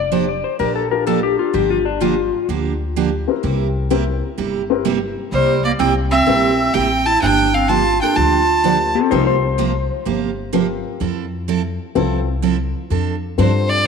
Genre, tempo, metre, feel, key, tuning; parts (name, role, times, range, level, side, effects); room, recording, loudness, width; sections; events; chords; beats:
country, western swing; 127 BPM; 4/4; swing 68% on 8ths; F major; A4 = 445 Hz
clean lap steel guitar; second line; 0.0-2.5, 8.9-10.2 s; C4 to D5; -19 LUFS; left 10 dB
upright bass; bass; 0.0-13.8 s; F1 to G2; -22 LUFS; left 1 dB
picked steel-string acoustic guitar; accompaniment; 0.1-13.5 s; C3 to A4; -22 LUFS; right 9 dB
dark upright piano; accompaniment; 0.9-13.9 s; Bb3 to C5; -23 LUFS; left 12 dB
clear fiddle; melody; 5.3-9.0, 13.4-13.9 s; C5 to A5; -18 LUFS; left 1 dB
growling clarinet; second line; 5.3-9.0 s; G3 to F4; -19 LUFS; right 7 dB
wet plate reverb, RT60 2.5 s; 1960s-style stereo with parts hard left and right; -15 LUFS; side -6 dB against mid
0.0-12.9 A section
0.0 Bb6/F; 1.5 Gm7; 3.4 C7; 7.2 Gm9; 9.1 C7sus4; 11.0 Fmaj7; 12.9 F69
0.12 0.59 1.07 | 1.54 2.01 2.49 2.96 | 3.43 3.91 4.38 4.86 | 5.33 5.80 6.28 6.75 | 7.22 7.70 8.17 8.64 | 9.12 9.59 10.06 10.54 | 11.01 11.49 11.96 12.44 | 12.91 13.38 13.86